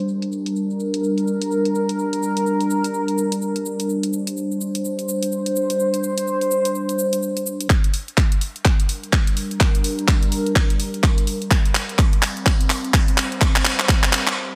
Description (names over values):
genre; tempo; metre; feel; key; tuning
bass house; 126 BPM; 4/4; swing 61% on 16ths; G minor; A4 = 440 Hz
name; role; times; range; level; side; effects
sweeping resonant pad; sustained chords; 0.0-14.6 s; G3 to C5; -24 LUFS; equal; chorus, sidechain pumping
garage drum kit; drums; 0.1-14.3 s; handclaps, hi-hat, shaker; -25 LUFS; equal; low-pass filter on perc, low-pass filter on hats, low-pass filter on snare
electronic kick drum; drums; 7.7-14.0 s; none; -20 LUFS; equal; overdrive
room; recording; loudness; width
moderate plate reverb, RT60 1.3 s; dreamy mix soaked in reverb; -20 LUFS; mono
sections
0.0-7.7 A section; 7.7-14.6 B section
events
build-up 7.7-14.6; drum fill 7.7-14.4; filter sweep on analog synth pad 7.7-14.6; break 14.4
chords
0.0 Gm